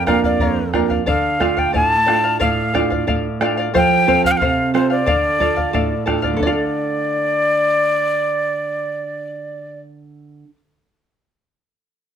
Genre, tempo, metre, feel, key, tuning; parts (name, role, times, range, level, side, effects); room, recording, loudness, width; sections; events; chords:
andean folk, Andean ensemble; 90 BPM; 2/4; straight; D minor; A4 = 442 Hz
breathy quena; melody; 0.0-9.8 s; C5 to A5; -18 LUFS; left 1 dB; slapback echo
charango; accompaniment; 0.0-10.6 s; A4 to F5; -22 LUFS; left 4 dB
nylon-string guitar; accompaniment; 0.0-10.6 s; F2 to A4; -21 LUFS; right 6 dB
bombo; percussion; 0.1-6.7 s; -24 LUFS; left 1 dB
moderate small room reverb, RT60 0.5 s; -15 LUFS; side -8 dB against mid
0.0-6.4 A section; 6.4-9.0 B section
0.0 Bb; 1.1 Dm; 3.7 F; 5.1 Dm